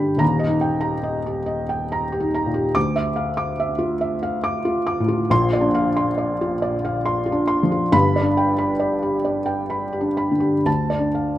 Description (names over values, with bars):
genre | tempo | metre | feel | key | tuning
neoclassical minimalist piano | 61-73 BPM | 3/4 | rubato | D minor | A4 = 441 Hz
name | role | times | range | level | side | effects
felt-muted upright piano | solo | 0.0-11.4 s | Eb1 to D6 | -18 LUFS | equal | none
room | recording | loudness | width
light reverb, studio reverb | rough home demo mix | -19 LUFS | side -13 dB against mid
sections
0.0-11.4 A section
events
none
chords
0.2 Eb; 2.8 Dmadd9; 5.3 Bbadd9; 7.9 G; 10.7 Dm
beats
| 0.21 1.06 1.93 | 2.76 3.59 4.45 | 5.30 6.17 7.05 | 7.93 8.82 9.71 | 10.66